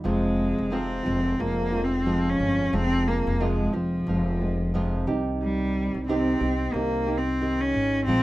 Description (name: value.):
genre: acoustic pop.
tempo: 90 BPM.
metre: 4/4.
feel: swing 60% on 16ths.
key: F minor.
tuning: A4 = 439 Hz.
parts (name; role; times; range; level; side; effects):
nylon-string guitar; accompaniment; 0.0-8.2 s; F2 to G4; -28 LUFS; right 2 dB; none.
upright bass; bass; 0.0-8.2 s; F1 to C2; -29 LUFS; left 1 dB; none.
rich cello; melody; 0.1-8.2 s; F3 to Db4; -26 LUFS; equal; none.
room: light reverb.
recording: rough home demo mix.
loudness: -22 LUFS.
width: side -17 dB against mid.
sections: 0.0-8.2 A section.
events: none.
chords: 0.0 Fm; 5.1 Cm.